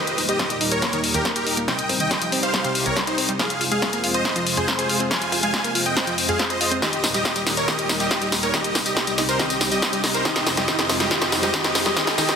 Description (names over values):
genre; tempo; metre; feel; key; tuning
uplifting trance; 140 BPM; 4/4; straight; F minor; A4 = 440 Hz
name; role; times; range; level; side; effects
big supersaw lead; melody; 0.0-12.4 s; Eb4 to Ab5; -24 LUFS; equal; cassette tape, sidechain pumping, dub echo
supersaw pad; sustained chords; 0.0-12.4 s; C2 to C5; -29 LUFS; equal; sidechain pumping
punchy analog drum machine; drums; 0.1-12.4 s; hi-hat, snare drum, tambourine; -22 LUFS; left 1 dB; high-pass filter on perc, high-pass filter on snare, high-pass filter on hats, high-pass filter on room
analog pluck; arpeggios; 0.2-12.2 s; C2 to F4; -29 LUFS; right 1 dB; chorus, sidechain pumping, dub echo
electronic kick drum; drums; 0.4-12.3 s; none; -33 LUFS; equal; none
riser; sound effects; 8.7-12.4 s; none; -32 LUFS; right 1 dB; none
room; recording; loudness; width
moderate lush hall reverb, RT60 1.9 s; dense, heavily limited modern master; -19 LUFS; side -6 dB against mid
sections
0.0-12.4 A section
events
build-up 0.0-12.4; drum fill 0.0-12.4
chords
0.0 Eb; 1.7 Cm; 3.4 Fm; 6.8 Eb; 8.5 Cm; 10.3 Fm